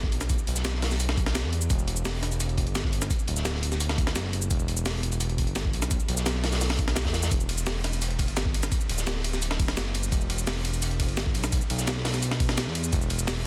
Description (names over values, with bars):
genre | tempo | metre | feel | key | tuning
liquid drum and bass | 171 BPM | 4/4 | straight | E minor | A4 = 441 Hz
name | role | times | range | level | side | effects
smooth gliding synth bass | bass | 0.0-13.5 s | D1 to E2 | -31 LUFS | equal | none
crunchy breakbeat drum kit | drums | 0.0-13.4 s | hi-hat, snare drum | -37 LUFS | equal | high-pass filter on hats, high-pass filter on snare, high-pass filter on room
electronic kick drum | drums | 0.0-13.0 s | none | -30 LUFS | equal | none
breakbeat sampler-style drum kit | drums | 0.1-13.3 s | cabasa, hi-hat, ride cymbal, snare drum | -33 LUFS | equal | none
room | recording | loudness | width
little or no reverb | dense, heavily limited modern master | -27 LUFS | mono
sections
0.0-13.5 A section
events
none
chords
none